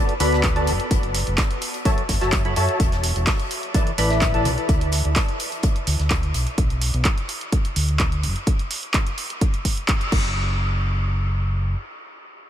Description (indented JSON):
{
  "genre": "piano house",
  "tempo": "127 BPM",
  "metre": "4/4",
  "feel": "straight",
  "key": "unclear",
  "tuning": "A4 = 439 Hz",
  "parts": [
    { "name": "percussive organ stab", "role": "riff", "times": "0.0-4.5 s", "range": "E3 to B5", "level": "-25 LUFS", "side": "equal", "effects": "ensemble chorus, sidechain pumping, ping-pong delay" },
    { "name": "punchy analog drum machine", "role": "drums", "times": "0.1-10.2 s", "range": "crash cymbal, handclaps, hi-hat", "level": "-26 LUFS", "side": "right 1 dB", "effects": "none" },
    { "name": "fingered electric bass", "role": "bass", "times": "0.2-11.7 s", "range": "E1 to F#2", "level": "-22 LUFS", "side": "equal", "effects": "sidechain pumping" },
    { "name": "loose indie drum kit", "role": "drums", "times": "0.2-6.5 s", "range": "hi-hat, snare drum", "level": "-36 LUFS", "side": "left 4 dB", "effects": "high-pass filter on hats, high-pass filter on snare, high-pass filter on room" },
    { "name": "electronic kick drum", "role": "drums", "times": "0.4-10.2 s", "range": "none", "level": "-21 LUFS", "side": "equal", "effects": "none" },
    { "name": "vibraphone with medium mallets", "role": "melody", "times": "4.1-4.3 s", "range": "E5", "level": "-34 LUFS", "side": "left 4 dB", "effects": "ping-pong delay" }
  ],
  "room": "light reverb, small room ambience",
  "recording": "none",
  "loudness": "-19 LUFS",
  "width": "side -11 dB against mid",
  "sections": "0.0-10.4 A section; 10.4-12.5 B section",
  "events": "drop 0.0-10.4; band accent 9.9",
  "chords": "0.0 Bm7; 0.9 F#m7; 2.8 E7sus4; 4.7 N.C.; 6.3 Bm; 8.5 N.C.",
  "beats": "0.44 | 0.91 1.38 1.85 2.33 | 2.80 3.27 3.75 4.22 | 4.69 5.16 5.63 6.11 | 6.58 7.05 7.52 8.00 | 8.47 8.94 9.41 9.89 | 10.36 10.83 11.30"
}